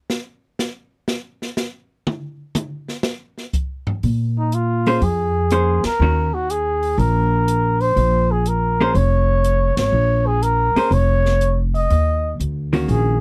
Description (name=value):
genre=jazz, small-group swing and bop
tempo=122 BPM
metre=4/4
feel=swing 68% on 8ths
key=Bb minor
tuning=A4 = 439 Hz
part: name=open jazz drum kit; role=drums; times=0.1-13.0 s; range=hi-hat, kick drum, ride cymbal, snare drum, toms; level=-28 LUFS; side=equal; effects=none
part: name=upright bass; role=bass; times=4.0-13.2 s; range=F1 to Bb2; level=-21 LUFS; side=equal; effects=none
part: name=breathy trumpet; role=melody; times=4.4-13.2 s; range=Eb4 to Eb5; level=-22 LUFS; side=equal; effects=none
part: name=hollow-body jazz guitar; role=accompaniment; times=4.9-13.2 s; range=Eb3 to C5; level=-22 LUFS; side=equal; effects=none
room=little or no reverb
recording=dry, close 1970s-style studio recording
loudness=-19 LUFS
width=mono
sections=0.0-4.0 A section; 4.0-13.2 B section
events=drum solo 0.0-4.0; band accent 5.8, 9.7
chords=0.0 N.C.; 4.0 Bbm9; 6.0 Ebm7; 8.0 Bbm; 11.9 Ebm7